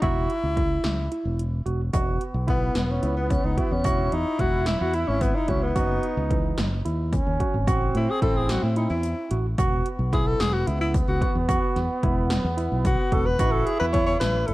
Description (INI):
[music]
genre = progressive instrumental, band music in an uneven meter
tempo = 220 BPM (eighths)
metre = 7/8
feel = straight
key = E major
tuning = A4 = 444 Hz
[part]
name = breathy tenor saxophone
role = melody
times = 0.0-14.5 s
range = B3 to C#5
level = -27 LUFS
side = left 2 dB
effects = none
[part]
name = barky tine electric piano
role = arpeggios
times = 0.0-14.5 s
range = E3 to F#4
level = -31 LUFS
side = right 3 dB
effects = none
[part]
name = fingered electric bass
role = bass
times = 0.0-14.5 s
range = E1 to A2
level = -26 LUFS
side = equal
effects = none
[part]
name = 80s electronic pad drums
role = drums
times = 0.0-14.5 s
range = hi-hat, kick drum, snare drum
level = -26 LUFS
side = equal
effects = none
[part]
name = breathy flugelhorn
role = second line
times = 1.9-14.5 s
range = B3 to E4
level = -30 LUFS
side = right 2 dB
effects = none
[part]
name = tube shaker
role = percussion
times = 1.9-14.5 s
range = none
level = -47 LUFS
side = left 9 dB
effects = none
[sound]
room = light reverb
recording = worn, warbling old tape, cassette tape, warbly pitch drift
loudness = -21 LUFS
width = side -18 dB against mid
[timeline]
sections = 0.0-1.9 A section; 1.9-14.5 B section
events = tenor saxophone solo 1.9-14.5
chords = 0.0 C#madd11/E; 1.9 Esus2; 3.9 C#m/E; 5.8 F#5; 7.7 Am; 9.6 Esus2; 13.4 A5